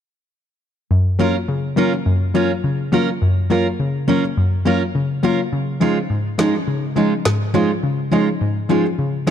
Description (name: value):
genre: dancehall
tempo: 104 BPM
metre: 4/4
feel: swing 56% on 16ths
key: F# major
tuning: A4 = 440 Hz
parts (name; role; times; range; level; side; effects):
- soft round pluck; accompaniment; 0.9-9.3 s; F#2 to E#4; -18 LUFS; left 3 dB; chorus
- picked steel-string acoustic guitar; arpeggios; 1.2-9.3 s; G#3 to A#4; -21 LUFS; right 7 dB; ping-pong delay
- electronic snare drum and rim click; drums; 6.4-9.3 s; none; -25 LUFS; equal; none
room: light reverb, small room ambience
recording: dark, warm production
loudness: -16 LUFS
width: side -9 dB against mid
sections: 0.9-9.3 A section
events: none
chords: 0.9 F#maj7; 5.5 C#add9